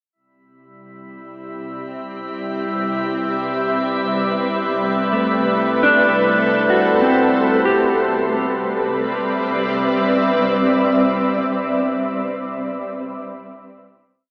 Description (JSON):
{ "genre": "ambient", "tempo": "free time", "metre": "none", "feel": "none", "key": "C lydian", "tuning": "A4 = 440 Hz", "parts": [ { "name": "drifting glass-harmonics texture", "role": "texture", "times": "1.0-7.7 s", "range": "E4 to E5", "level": "-29 LUFS", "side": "equal", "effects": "chorus, built-in reverb" }, { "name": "granular cloud pad", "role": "sustained chords", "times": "2.2-12.2 s", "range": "G3 to E5", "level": "-22 LUFS", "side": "equal", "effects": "built-in reverb" }, { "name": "organ-like drone", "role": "drone", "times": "1.0-12.3 s", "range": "C3 to G3", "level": "-28 LUFS", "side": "equal", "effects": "ensemble chorus, built-in reverb" }, { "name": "mellow electric guitar", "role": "arpeggios", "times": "5.1-12.5 s", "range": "A3 to G4", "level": "-21 LUFS", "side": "equal", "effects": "diffuse ambient delay" } ], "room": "wet cathedral reverb, RT60 6.3 s", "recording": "AM radio sound", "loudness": "-18 LUFS", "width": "mono", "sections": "0.1-7.6 A section; 7.6-11.4 final chord", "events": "fade-in on ambient pad 0.1-7.6; fade-in on clean electric guitar 0.1-7.6; fade-in on synth texture 0.1-7.6", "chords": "0.1 Cmaj7; 3.9 Am7; 7.6 Cmaj7" }